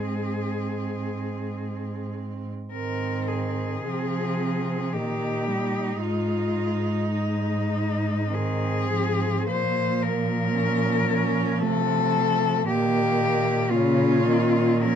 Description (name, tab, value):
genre	classical, lyrical piece for cello ensemble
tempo	47-58 BPM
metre	3/4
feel	rubato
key	Ab major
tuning	A4 = 441 Hz
part	rich cello	melody	0.0-15.0 s	Eb4 to C5	-26 LUFS	left 5 dB	none
part	rich cello	second line	0.0-15.0 s	A3 to Eb4	-31 LUFS	right 10 dB	none
part	rich cello	accompaniment	0.0-15.0 s	Db3 to Ab3	-29 LUFS	left 1 dB	none
part	clear cello	bass	0.0-15.0 s	Ab2 to C3	-28 LUFS	right 2 dB	none
room	light reverb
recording	dark, warm production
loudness	-22 LUFS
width	side -8 dB against mid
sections	0.0-2.7 A section; 2.7-15.0 B section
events	none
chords	0.0 Ab; 4.9 Eb/Bb; 6.0 Ab; 9.5 Bbm; 11.6 F/C; 12.7 Bbm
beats	0.30 1.54 | 2.74 3.85 4.93 | 6.00 7.10 8.32 | 9.47 10.57 11.62 | 12.68 13.72 14.85